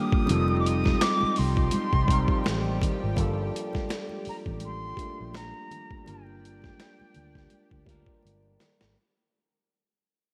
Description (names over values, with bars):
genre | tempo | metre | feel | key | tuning
R&B, neo-soul | 83 BPM | 4/4 | swing 57% on 16ths | G minor | A4 = 438 Hz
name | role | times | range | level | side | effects
concert flute | melody | 0.0-8.2 s | G5 to Eb6 | -34 LUFS | equal | none
overdriven tine electric piano | accompaniment | 0.0-9.0 s | G3 to C5 | -34 LUFS | equal | phaser
lush unison pad | sustained chords | 0.0-8.9 s | F3 to G4 | -39 LUFS | equal | chorus
boom bap sampler-style drum kit | drums | 0.1-8.9 s | finger snaps, hi-hat, kick drum, snare drum | -30 LUFS | equal | none
vintage muted fingered electric bass | bass | 0.3-8.9 s | F1 to D2 | -31 LUFS | equal | none
congas | percussion | 0.3-8.8 s | none | -40 LUFS | equal | none
room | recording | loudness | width
moderate lush hall reverb, RT60 2.7 s | bright 1980s-style digital production, vinyl crackle | -26 LUFS | mono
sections
0.0-9.0 A section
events
fade-out 0.0-9.0; drum fill 8.2-9.0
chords
0.3 F9; 3.2 Gm9; 6.1 Gm7